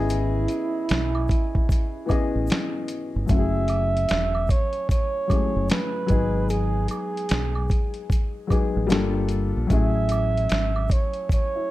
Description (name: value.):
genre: lo-fi hip hop.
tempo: 75 BPM.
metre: 4/4.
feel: swing 63% on 16ths.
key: F# dorian.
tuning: A4 = 438 Hz.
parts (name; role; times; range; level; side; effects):
dark flugelhorn; melody; 0.0-11.7 s; E4 to E5; -28 LUFS; right 4 dB; low-pass filter, plate reverb.
dark upright piano; accompaniment; 0.0-11.7 s; E3 to D#5; -27 LUFS; left 4 dB; cassette tape, low-pass filter, plate reverb.
deep dub fingered electric bass; bass; 0.0-10.9 s; E1 to B1; -25 LUFS; equal; none.
dusty soul sampler-style drum kit; drums; 0.1-11.5 s; finger snaps, hi-hat, kick drum, snare drum; -23 LUFS; equal; none.
egg shaker and woodblock; percussion; 0.1-11.5 s; none; -38 LUFS; right 3 dB; none.
room: light reverb.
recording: dark, warm production.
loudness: -21 LUFS.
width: side -16 dB against mid.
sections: 0.0-3.3 A section; 3.3-11.7 B section.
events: none.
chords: 0.0 C#m9/G#; 3.3 F#m9; 6.1 G#m7; 8.9 Gm9; 9.7 F#m9.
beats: | 0.10 0.90 1.70 2.50 | 3.30 4.10 4.90 5.70 | 6.50 7.30 8.10 8.90 | 9.70 10.50 11.30.